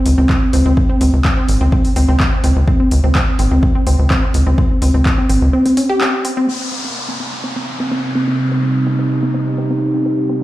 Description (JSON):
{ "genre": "melodic techno", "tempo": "126 BPM", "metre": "4/4", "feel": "straight", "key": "C phrygian", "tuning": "A4 = 440 Hz", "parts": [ { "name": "tight sequencer bass", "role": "bass", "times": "0.1-5.5 s", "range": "Ab1 to Db2", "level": "-12 LUFS", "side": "equal", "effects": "sidechain pumping" }, { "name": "deep house drum kit", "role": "drums", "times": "0.1-6.3 s", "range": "handclaps, hi-hat", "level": "-22 LUFS", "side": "equal", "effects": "overdrive, studio reverb" }, { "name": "wide unison pluck", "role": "arpeggios", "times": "0.2-10.3 s", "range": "C4 to G4", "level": "-18 LUFS", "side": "equal", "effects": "cassette tape, sidechain pumping, digital delay" }, { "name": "electronic kick drum", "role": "drums", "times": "0.3-5.2 s", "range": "none", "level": "-16 LUFS", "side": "equal", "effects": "overdrive, studio reverb" }, { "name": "sweeping resonant pad", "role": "sustained chords", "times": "6.5-10.4 s", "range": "C3 to Eb4", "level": "-17 LUFS", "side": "right 1 dB", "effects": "chorus, phaser, sidechain pumping" }, { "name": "downlifter", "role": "sound effects", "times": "6.5-10.3 s", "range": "none", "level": "-25 LUFS", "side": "left 1 dB", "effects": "none" } ], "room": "light reverb", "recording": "played on a big sound system in a bare room, stone room reverb", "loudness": "-13 LUFS", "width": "side -16 dB against mid", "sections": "0.0-6.5 A section; 6.5-10.4 B section", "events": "filter sweep on synth pluck 6.5-10.4; filter sweep on analog synth pad 6.5-10.4", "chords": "0.0 Db5; 6.5 Cm" }